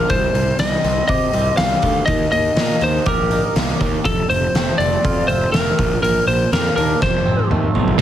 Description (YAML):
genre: quiet-loud alternative rock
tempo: 121 BPM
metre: 4/4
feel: straight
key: unclear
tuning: A4 = 440 Hz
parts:
  - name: lightly driven lead guitar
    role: melody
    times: 0.0-7.5 s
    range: A4 to F5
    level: -19 LUFS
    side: left 1 dB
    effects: plate reverb, digital delay
  - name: clean electric guitar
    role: arpeggios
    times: 0.0-8.0 s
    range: F2 to G4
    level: -24 LUFS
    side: right 6 dB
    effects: phaser, plate reverb, digital delay
  - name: fuzz picked electric bass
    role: bass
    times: 0.1-7.9 s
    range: F1 to C3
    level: -21 LUFS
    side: equal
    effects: overdrive
  - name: oversized low-tuned drum kit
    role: drums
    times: 0.1-8.0 s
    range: hi-hat, kick drum, snare drum, toms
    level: -20 LUFS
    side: equal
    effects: none
room: light reverb, studio ambience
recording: heavily compressed radio sound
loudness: -15 LUFS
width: side -11 dB against mid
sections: 0.0-8.0 A section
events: drum fill 7.0-8.0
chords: 0.1 Cm; 2.1 Eb; 4.1 F; 5.8 Bb; 7.0 F